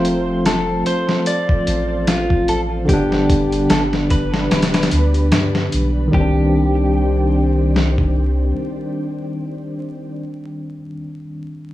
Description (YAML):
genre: trip hop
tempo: 74 BPM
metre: 4/4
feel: swing 56% on 16ths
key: C dorian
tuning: A4 = 440 Hz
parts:
  - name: clean electric guitar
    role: melody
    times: 0.0-10.7 s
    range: F4 to D5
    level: -23 LUFS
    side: left 1 dB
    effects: vintage 12-bit sampler grit, tape echo
  - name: tine electric piano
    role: accompaniment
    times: 0.0-11.7 s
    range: D3 to F4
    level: -21 LUFS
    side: equal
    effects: tremolo, tape echo
  - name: string machine, cellos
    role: sustained chords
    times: 0.0-10.1 s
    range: Eb3 to C6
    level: -27 LUFS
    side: equal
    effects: ensemble chorus
  - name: soft dub sub bass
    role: bass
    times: 0.0-8.5 s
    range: D1 to G2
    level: -20 LUFS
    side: equal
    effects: none
  - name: dusty soul sampler-style drum kit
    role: drums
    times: 0.0-8.1 s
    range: hi-hat, kick drum, snare drum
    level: -19 LUFS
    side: equal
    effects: overdrive
room: light reverb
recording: vinyl crackle, studio reverb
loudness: -15 LUFS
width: side -15 dB against mid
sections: 0.0-6.1 A section; 6.1-9.4 B section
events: none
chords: 0.0 F; 2.9 G; 6.1 Cmadd9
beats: 0.46 1.27 2.08 | 2.89 3.70 4.51 5.32 | 6.13 6.95 7.76 8.57